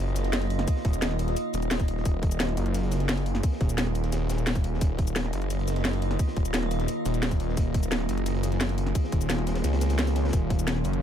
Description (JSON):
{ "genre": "dark technical drum and bass", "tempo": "174 BPM", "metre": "4/4", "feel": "straight", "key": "Eb minor", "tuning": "A4 = 440 Hz", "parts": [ { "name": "metallic inharmonic drone", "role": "sustained chords", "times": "0.0-11.0 s", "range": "Eb3 to Eb5", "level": "-31 LUFS", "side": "right 1 dB", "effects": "chorus, built-in reverb, sidechain pumping" }, { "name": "snarling distorted saw bass", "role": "bass", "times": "0.0-11.0 s", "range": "Eb1 to Db2", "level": "-27 LUFS", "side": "equal", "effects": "distortion, tube saturation, sidechain pumping" }, { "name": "crunchy breakbeat drum kit", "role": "drums", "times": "0.1-10.9 s", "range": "hi-hat, snare drum", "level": "-42 LUFS", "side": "equal", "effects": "none" }, { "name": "drum and bass drum kit", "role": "drums", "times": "0.2-11.0 s", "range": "cabasa, hi-hat, snare drum", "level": "-30 LUFS", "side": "equal", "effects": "overdrive" }, { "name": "electronic kick drum", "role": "drums", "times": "0.7-10.6 s", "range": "none", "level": "-25 LUFS", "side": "equal", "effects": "overdrive" } ], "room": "little or no reverb", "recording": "none", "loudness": "-24 LUFS", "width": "side -9 dB against mid", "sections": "0.0-11.0 A section", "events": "kick drops out 9.6-10.3", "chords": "0.0 Eb5" }